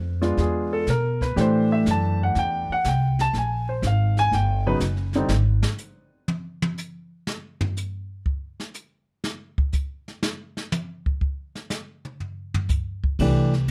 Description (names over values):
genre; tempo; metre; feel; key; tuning
jazz piano trio; 122 BPM; 4/4; swing 69% on 8ths; unclear; A4 = 440 Hz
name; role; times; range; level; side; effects
upright bass; bass; 0.0-5.6, 13.2-13.7 s; F#1 to B2; -24 LUFS; equal; none
warm grand piano; melody; 0.2-5.3, 13.2-13.5 s; Db3 to A5; -26 LUFS; equal; plate reverb
jazz brush drum kit; drums; 0.2-13.7 s; brushed snare drum, crash cymbal, hi-hat, kick drum, ride cymbal, snare drum, toms; -29 LUFS; equal; none
room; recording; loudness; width
light reverb; dark, warm production; -24 LUFS; mono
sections
0.0-13.2 A section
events
grand piano solo 0.0-13.7; drum solo 5.3-13.2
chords
0.0 E7b9; 1.4 Am7; 3.3 Absus2; 4.3 Ebaug; 5.3 N.C.; 13.2 C